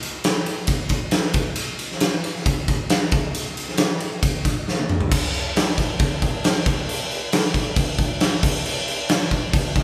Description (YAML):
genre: rock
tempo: 136 BPM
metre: 4/4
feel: straight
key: none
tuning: none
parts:
  - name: big rock drum kit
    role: drums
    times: 0.0-9.8 s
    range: crash cymbal, kick drum, ride cymbal, snare drum, toms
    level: -22 LUFS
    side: equal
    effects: none
room: light reverb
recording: band playing live in one room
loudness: -22 LUFS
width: mono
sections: 0.0-5.1 A section; 5.1-9.8 B section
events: drum fill 4.7-5.1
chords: none